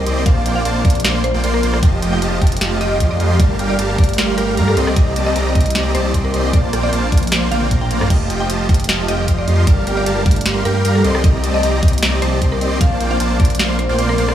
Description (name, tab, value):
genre	future bass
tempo	153 BPM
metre	4/4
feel	half-time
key	Bb major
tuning	A4 = 441 Hz
part	mallet-like synth pluck	melody	0.0-14.3 s	A4 to G5	-24 LUFS	left 1 dB	chorus, sidechain pumping, digital delay
part	ethereal airy pad	sustained chords	0.0-14.3 s	Eb3 to G4	-27 LUFS	right 2 dB	ensemble chorus, built-in reverb, sidechain pumping
part	supersaw chords	riff	0.0-14.3 s	F3 to C6	-20 LUFS	right 1 dB	sidechain pumping, digital delay
part	wide detuned saw bass	bass	0.0-14.3 s	F1 to G2	-19 LUFS	equal	chorus, sidechain pumping
part	trap drum kit	drums	0.1-14.3 s	crash cymbal, hi-hat, rim click, snare drum, toms	-21 LUFS	equal	none
part	electronic kick drum	drums	0.3-13.5 s	none	-13 LUFS	equal	none
room	light reverb, digital ambience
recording	small room ambience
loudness	-13 LUFS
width	side -11 dB against mid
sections	0.0-14.3 A section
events	drum fill 7.5-8.1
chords	0.3 Bbmaj9; 1.8 F9; 3.4 Gm9; 4.8 Cm9; 6.5 Bbmaj9; 8.1 F9; 9.7 Gm9; 11.0 Cm9; 12.8 Bbmaj9